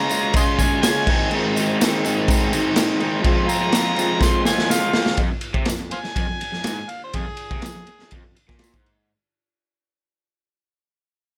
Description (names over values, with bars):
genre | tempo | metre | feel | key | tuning
garage rock duo or trio | 123 BPM | 4/4 | straight | F minor | A4 = 445 Hz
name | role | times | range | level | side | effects
overdriven harmonica | melody | 0.0-8.1 s | Ab4 to C6 | -27 LUFS | equal | none
raw garage guitar | riff | 0.0-9.1 s | F2 to F4 | -24 LUFS | equal | overdrive
raw garage drum kit | drums | 0.1-9.0 s | crash cymbal, kick drum, ride cymbal, snare drum | -24 LUFS | equal | none
tambourine | percussion | 0.1-8.7 s | none | -33 LUFS | equal | none
room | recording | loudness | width
little or no reverb | none | -20 LUFS | mono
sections
0.0-5.2 A section; 5.2-9.1 B section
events
drum fill 4.2-5.2; fade-out 5.2-9.1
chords
0.0 Db; 1.1 Ab; 3.3 Fm